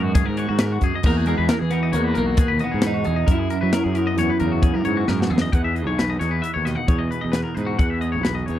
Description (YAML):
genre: math rock and midwest emo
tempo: 134 BPM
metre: 5/4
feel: straight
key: E lydian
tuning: A4 = 440 Hz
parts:
  - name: clean electric guitar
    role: accompaniment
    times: 0.0-8.6 s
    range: E2 to B4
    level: -27 LUFS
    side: right 6 dB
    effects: ensemble chorus
  - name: twangy electric guitar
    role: arpeggios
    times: 0.0-8.6 s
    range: F#4 to F#5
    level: -27 LUFS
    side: left 7 dB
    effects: none
  - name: fuzz fingered electric bass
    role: bass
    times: 0.0-8.6 s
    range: B1 to F#3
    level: -23 LUFS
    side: equal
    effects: overdrive
  - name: crisp fusion drum kit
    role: drums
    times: 0.1-8.6 s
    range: crash cymbal, hi-hat, kick drum, snare drum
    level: -20 LUFS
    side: left 1 dB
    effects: none
  - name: twelve-string electric guitar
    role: melody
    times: 1.1-5.1 s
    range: G#3 to E4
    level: -25 LUFS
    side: left 1 dB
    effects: tape echo
room: little or no reverb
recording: dry, close 1970s-style studio recording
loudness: -18 LUFS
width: side -12 dB against mid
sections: 0.0-5.5 A section; 5.5-8.6 B section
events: drum fill 5.1-5.5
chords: 0.0 G#m9; 1.1 Emaj9; 3.3 F#9sus4; 5.5 Emaj9